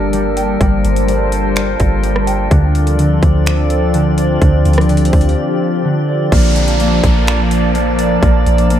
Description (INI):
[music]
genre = hip hop, atmospheric cloud-rap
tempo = 126 BPM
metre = 4/4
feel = half-time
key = unclear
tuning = A4 = 440 Hz
[part]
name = warbly tape-like pad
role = sustained chords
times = 0.0-8.8 s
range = F3 to A5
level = -16 LUFS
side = left 1 dB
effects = chorus, built-in reverb, sidechain pumping
[part]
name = concert harp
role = arpeggios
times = 0.0-8.8 s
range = D3 to G5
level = -18 LUFS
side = equal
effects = low-pass filter, tape echo
[part]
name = soft 808-style bass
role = bass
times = 0.0-8.8 s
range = G1 to D2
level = -15 LUFS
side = equal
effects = none
[part]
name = drifting glass-harmonics texture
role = texture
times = 0.0-8.8 s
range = Bb3 to D5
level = -24 LUFS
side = left 1 dB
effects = chorus, built-in reverb
[part]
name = trap drum kit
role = drums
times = 0.1-8.8 s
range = crash cymbal, finger snaps, hi-hat, kick drum, rim click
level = -17 LUFS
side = equal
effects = overdrive
[part]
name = downlifter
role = sound effects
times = 6.3-8.8 s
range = none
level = -24 LUFS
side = equal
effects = none
[sound]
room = light reverb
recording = none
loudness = -11 LUFS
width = side -10 dB against mid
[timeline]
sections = 0.0-6.3 A section; 6.3-8.8 B section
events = break 5.4-6.3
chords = 0.0 Gmadd9; 2.5 Dm7; 6.3 Bbmaj7